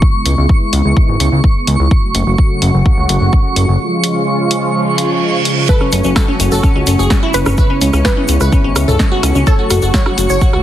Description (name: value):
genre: progressive house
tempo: 127 BPM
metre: 4/4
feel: straight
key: F# minor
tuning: A4 = 439 Hz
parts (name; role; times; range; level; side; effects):
- filtered supersaw swell; sustained chords; 0.0-10.6 s; C#3 to F#4; -18 LUFS; right 1 dB; sidechain pumping, low-pass filter
- electronic kick drum; drums; 0.0-10.5 s; none; -12 LUFS; equal; none
- twinkling granular texture; texture; 0.0-10.6 s; C#6; -22 LUFS; right 1 dB; built-in reverb, sidechain pumping
- fat analog bass; bass; 0.3-10.6 s; F#1 to C#2; -14 LUFS; equal; sidechain pumping
- deep house drum kit; drums; 0.3-10.3 s; hi-hat, snare drum; -19 LUFS; left 1 dB; overdrive
- reverse cymbal; sound effects; 4.9-5.7 s; none; -20 LUFS; right 5 dB; none
- wide unison pluck; melody; 5.7-10.3 s; A4 to B4; -22 LUFS; right 1 dB; sidechain pumping, ping-pong delay
- glassy wavetable pluck; arpeggios; 5.7-10.6 s; C#4 to C#5; -17 LUFS; left 1 dB; chorus, sidechain pumping, ping-pong delay
- egg shaker; percussion; 5.7-10.5 s; none; -26 LUFS; left 1 dB; none
- punchy analog drum machine; percussion; 5.8-10.6 s; congas, rim click, toms; -23 LUFS; right 2 dB; sidechain pumping on snare, sidechain pumping on perc, sidechain pumping on toms
room: light reverb, digital ambience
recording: heavily compressed radio sound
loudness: -10 LUFS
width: side -12 dB against mid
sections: 0.0-10.6 A section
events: filter sweep on supersaw synth 0.0-10.6; break 3.8-5.7; reverse cymbal 4.9-5.7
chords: 0.0 C#m7; 1.9 F#m; 3.8 C#; 5.7 F#m; 7.6 C#m7; 9.5 F#m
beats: | 0.02 0.49 0.96 1.44 | 1.91 2.38 2.85 3.33 | 3.80 4.27 4.75 5.22 | 5.69 6.16 6.63 7.11 | 7.58 8.05 8.52 9.00 | 9.47 9.94 10.41